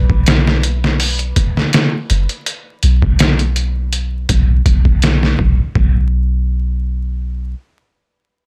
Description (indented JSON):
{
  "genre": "trip hop",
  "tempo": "82 BPM",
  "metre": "4/4",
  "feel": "swing 53% on 16ths",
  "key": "unclear",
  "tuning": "A4 = 439 Hz",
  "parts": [
    { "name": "soft 808-style bass", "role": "bass", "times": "0.0-7.5 s", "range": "F#1 to B1", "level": "-17 LUFS", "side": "equal", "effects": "none" },
    { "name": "trip hop sampler-style drum kit", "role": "drums", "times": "0.1-6.0 s", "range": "hi-hat, kick drum, snare drum", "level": "-17 LUFS", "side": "equal", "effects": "overdrive, small room ambience" }
  ],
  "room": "little or no reverb",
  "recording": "vinyl crackle",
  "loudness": "-15 LUFS",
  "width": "mono",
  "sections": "0.0-5.4 A section; 5.4-8.3 B section",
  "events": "none",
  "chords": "none"
}